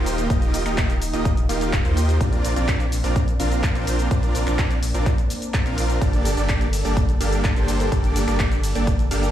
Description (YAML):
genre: EDM, festival progressive house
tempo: 126 BPM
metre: 4/4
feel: straight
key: Bb major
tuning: A4 = 440 Hz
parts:
  - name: lush unison pad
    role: sustained chords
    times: 0.0-9.3 s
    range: Eb3 to A4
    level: -30 LUFS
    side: equal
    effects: chorus, sidechain pumping
  - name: big supersaw lead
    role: riff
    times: 0.0-9.3 s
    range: Bb3 to F5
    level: -25 LUFS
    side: right 1 dB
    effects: sidechain pumping, dub echo
  - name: saturated sub bass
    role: bass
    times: 0.0-9.3 s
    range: Eb1 to Eb2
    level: -24 LUFS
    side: equal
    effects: sidechain pumping
  - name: big-room dance drum kit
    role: drums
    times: 0.1-9.3 s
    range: cabasa, finger snaps, handclaps, hi-hat, ride cymbal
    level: -30 LUFS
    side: equal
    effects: small room ambience
  - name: electronic kick drum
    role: drums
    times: 0.3-9.0 s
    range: none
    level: -21 LUFS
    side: equal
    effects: small room ambience
room: digital ambience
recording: played on a big sound system in a bare room, large studio reverb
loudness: -18 LUFS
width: side -11 dB against mid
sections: 0.0-9.3 A section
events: none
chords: 0.0 Ebadd9; 2.2 Bbadd9; 6.0 Gmadd9